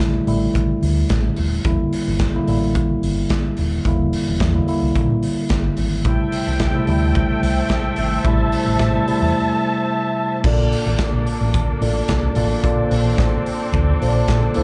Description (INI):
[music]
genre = disco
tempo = 109 BPM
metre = 4/4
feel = straight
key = unclear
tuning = A4 = 441 Hz
[part]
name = mellow tine electric piano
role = accompaniment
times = 0.0-14.6 s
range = C3 to D5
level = -23 LUFS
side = equal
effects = none
[part]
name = modern studio drum kit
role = drums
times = 0.0-14.6 s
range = crash cymbal, hi-hat, kick drum, snare drum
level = -25 LUFS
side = equal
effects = none
[part]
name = congas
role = percussion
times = 0.1-14.6 s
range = none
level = -33 LUFS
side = equal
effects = none
[part]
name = fingered electric bass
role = bass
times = 0.3-14.6 s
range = Eb1 to Bb2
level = -23 LUFS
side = equal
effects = none
[part]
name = dark studio string section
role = sustained chords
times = 6.1-14.6 s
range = C3 to A5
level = -26 LUFS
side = equal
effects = none
[sound]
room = light reverb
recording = live gig heard through the venue's PA, club reverb, nothing above 10.4 kHz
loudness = -19 LUFS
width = mono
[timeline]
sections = 0.0-1.6 A section; 1.6-10.4 B section; 10.4-14.6 C section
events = break 9.3-10.4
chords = 0.0 A7sus4; 1.6 Em7b5; 6.1 Am7; 10.4 Bbmaj7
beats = 0.00 0.55 1.10 | 1.65 2.20 2.75 3.30 | 3.85 4.40 4.95 5.50 | 6.05 6.60 7.15 7.70 | 8.25 8.80 9.35 9.90 | 10.44 10.99 11.54 12.09 | 12.64 13.19 13.73 14.28